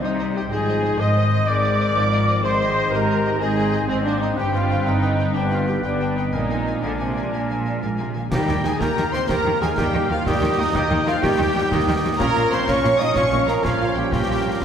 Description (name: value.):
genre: cinematic, heroic adventure film score.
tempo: 124 BPM (dotted quarters).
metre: 12/8.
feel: straight.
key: Eb major from 8.3 s.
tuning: A4 = 440 Hz.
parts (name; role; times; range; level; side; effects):
rich symphonic violin section; melody; 0.0-14.6 s; Eb5 to Eb6; -32 LUFS; left 5 dB; none.
bright concert flute; second line; 0.0-14.6 s; Eb5 to Ab5; -33 LUFS; left 1 dB; none.
dark clarinet; second line; 0.0-14.6 s; Ab3 to C5; -32 LUFS; left 2 dB; none.
warm oboe; second line; 0.0-14.6 s; Bb4 to Bb5; -30 LUFS; right 2 dB; none.
warm symphonic violin section; second line; 0.0-14.6 s; Bb4 to Eb6; -34 LUFS; left 1 dB; none.
warm symphonic viola section; accompaniment; 0.0-14.6 s; Bb3 to Eb5; -26 LUFS; equal; none.
warm French horn section; sustained chords; 0.0-14.6 s; Eb3 to Eb4; -30 LUFS; left 3 dB; none.
warm trombone section; sustained chords; 0.0-14.6 s; D3 to Db4; -32 LUFS; right 2 dB; none.
concert harp; arpeggios; 0.0-14.6 s; G2 to C5; -33 LUFS; left 5 dB; none.
mellow trumpet section; stabs; 0.0-14.6 s; Eb4 to Eb6; -25 LUFS; right 1 dB; none.
clear symphonic cello section; bass; 0.0-14.6 s; G2 to Eb3; -26 LUFS; right 1 dB; none.
warm chamber double bass section; bass; 0.0-14.6 s; G1 to Eb2; -27 LUFS; right 1 dB; none.
concert snare drum, clash cymbals and concert bass drum; drums; 8.3-14.6 s; none; -29 LUFS; equal; none.
timpani; percussion; 8.3-8.8 s; Eb3; -28 LUFS; right 2 dB; none.
room: wet scoring stage reverb, RT60 1.8 s.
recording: heard from further back in the room.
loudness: -18 LUFS.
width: side -8 dB against mid.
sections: 0.0-8.3 A section; 8.3-14.6 B section.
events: none.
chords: 0.0 Cm; 0.5 Ab; 4.4 G; 6.3 Bb7; 8.3 Eb; 12.2 Bbm.